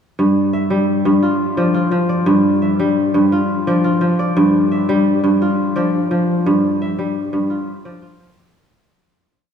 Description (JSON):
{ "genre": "west african traditional, West African string and xylophone music", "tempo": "115 BPM (dotted quarters)", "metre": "12/8", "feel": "straight", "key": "unclear", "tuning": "A4 = 441 Hz", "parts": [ { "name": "kora", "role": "solo", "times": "0.2-9.5 s", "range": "G2 to E5", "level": "-14 LUFS", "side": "equal", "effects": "none" } ], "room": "wet cathedral reverb, RT60 5.5 s", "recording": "recorded in a church or concert hall, small room ambience", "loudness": "-14 LUFS", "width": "side -7 dB against mid", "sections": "0.2-8.5 A section", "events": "fade-out 6.5-8.5", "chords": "0.2 Em/G; 1.2 Dm/F; 2.3 G5; 3.3 Dm/F; 4.4 G5; 5.4 Dm/F; 6.5 Em/G; 7.5 Dm/F" }